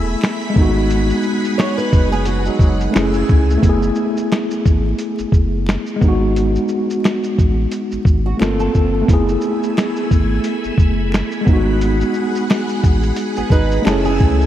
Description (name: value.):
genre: lo-fi hip hop.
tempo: 88 BPM.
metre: 4/4.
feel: swing 57% on 16ths.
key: F# dorian.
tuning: A4 = 440 Hz.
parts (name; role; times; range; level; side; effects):
mellow tine electric piano; accompaniment; 0.0-14.5 s; G#3 to A4; -18 LUFS; equal; fast stereo tremolo.
phased string machine; sustained chords; 0.0-3.6, 9.1-14.5 s; A3 to E6; -26 LUFS; equal; ensemble chorus, phaser.
warm sub bass; bass; 0.0-14.5 s; E1 to C#2; -19 LUFS; equal; none.
lo-fi sampler-style drum kit; drums; 0.2-14.5 s; finger snaps, hi-hat, kick drum, shaker, snare drum; -16 LUFS; equal; none.
finger snaps; percussion; 0.2-14.0 s; none; barely audible; none; none.
flamenco guitar; second line; 1.6-2.9, 8.3-9.1, 13.4-14.5 s; F#3 to C#5; -23 LUFS; right 4 dB; lush chorus, analog delay.
room: light reverb.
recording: vinyl crackle.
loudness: -14 LUFS.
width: side -12 dB against mid.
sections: 0.0-3.6 A section; 3.6-14.5 B section.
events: none.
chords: 0.0 F#m11 (rootless); 0.6 G#m7; 2.9 F#m9; 3.6 F#m11; 6.0 G#m7; 8.4 Gm11; 9.1 F#m11; 11.5 G#m7; 13.9 F#m9.